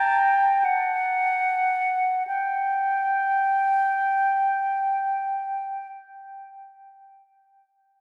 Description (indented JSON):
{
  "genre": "classical, free, expressive piece for unaccompanied flute",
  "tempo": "free time",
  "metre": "none",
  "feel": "none",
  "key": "unclear",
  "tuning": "A4 = 439 Hz",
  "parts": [
    { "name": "concert flute", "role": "solo", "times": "0.0-5.9 s", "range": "F#5 to G5", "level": "-24 LUFS", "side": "equal", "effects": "none" }
  ],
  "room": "wet cathedral reverb, RT60 4.8 s",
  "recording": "heard from further back in the room",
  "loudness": "-23 LUFS",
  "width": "mono",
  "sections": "0.0-2.3 A section; 2.3-6.5 B section",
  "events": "slowing down 0.0-2.3",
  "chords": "none",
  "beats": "free time"
}